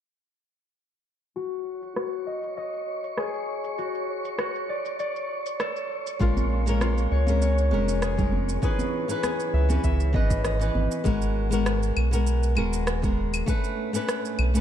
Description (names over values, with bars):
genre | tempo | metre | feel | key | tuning
sunset chillout | 99 BPM | 4/4 | swing 54% on 16ths | G# minor | A4 = 441 Hz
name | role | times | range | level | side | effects
concert harp | arpeggios | 1.4-12.2 s | E#4 to E5 | -31 LUFS | left 3 dB | low-pass filter, digital delay
electronic shaker, rim click and claves | drums | 1.4-14.6 s | none | -33 LUFS | equal | overdrive, low-pass filter on perc, low-pass filter on snare, low-pass filter on room
wind-like tuned noise texture | texture | 1.8-11.1 s | C#5 to C#6 | -36 LUFS | right 3 dB | built-in reverb
flamenco guitar | accompaniment | 6.2-14.6 s | E3 to B4 | -28 LUFS | left 2 dB | auto-pan, digital delay
round analog bass | bass | 6.2-14.6 s | D#1 to C#2 | -24 LUFS | equal | none
electronic kick drum | drums | 6.2-13.6 s | none | -26 LUFS | equal | overdrive
congas | percussion | 6.4-10.9 s | none | -34 LUFS | right 3 dB | none
room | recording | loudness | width
light reverb | dark, warm production | -23 LUFS | side -10 dB against mid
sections
1.4-11.1 A section; 11.1-14.6 B section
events
filter sweep on drum 1.4-11.1; filter sweep on harp 1.4-11.1; break 10.4-11.1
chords
1.4 G#5; 3.8 F#m; 6.2 A#m7; 8.6 C#m9; 11.1 G#m9; 13.5 Bm9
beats
| 1.36 1.96 2.57 3.18 | 3.78 4.39 4.99 5.60 | 6.21 6.81 7.42 8.02 | 8.63 9.24 9.84 10.45 | 11.05 11.66 12.27 12.87 | 13.48 14.09